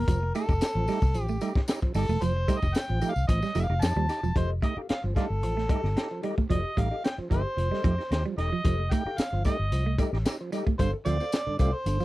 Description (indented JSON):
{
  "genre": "funk",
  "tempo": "112 BPM",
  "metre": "4/4",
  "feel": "straight",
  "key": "unclear",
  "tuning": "A4 = 442 Hz",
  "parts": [
    { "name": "overdriven harmonica", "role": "melody", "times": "0.0-12.0 s", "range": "D4 to A5", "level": "-32 LUFS", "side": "equal", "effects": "none" },
    { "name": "semi-hollow electric guitar", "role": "riff", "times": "0.0-12.0 s", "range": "F3 to A3", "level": "-32 LUFS", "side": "right 6 dB", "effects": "none" },
    { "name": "vintage muted fingered electric bass", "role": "bass", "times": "0.0-12.0 s", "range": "E1 to F2", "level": "-28 LUFS", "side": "equal", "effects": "none" },
    { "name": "percussive tonewheel organ", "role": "stabs", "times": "0.1-12.0 s", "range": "G2 to G4", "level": "-35 LUFS", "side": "right 3 dB", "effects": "overdrive, chorus vibrato, fast rotary speaker" },
    { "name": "crunchy breakbeat drum kit", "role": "drums", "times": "0.1-12.0 s", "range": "hi-hat, kick drum, snare drum", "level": "-28 LUFS", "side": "equal", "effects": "none" },
    { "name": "tambourine", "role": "percussion", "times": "0.1-4.4, 8.7-12.0 s", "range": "none", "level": "-46 LUFS", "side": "left 5 dB", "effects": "none" },
    { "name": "mellow electric guitar", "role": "accompaniment", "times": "4.4-12.0 s", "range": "G4 to F5", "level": "-37 LUFS", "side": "left 6 dB", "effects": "none" }
  ],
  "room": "little or no reverb",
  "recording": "dry, close 1970s-style studio recording",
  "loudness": "-25 LUFS",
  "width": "side -17 dB against mid",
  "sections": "0.0-4.4 A section; 4.4-12.0 B section",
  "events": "harmonica solo 0.0-4.4; break 0.1-4.4",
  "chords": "0.1 F9; 10.8 G9sus4"
}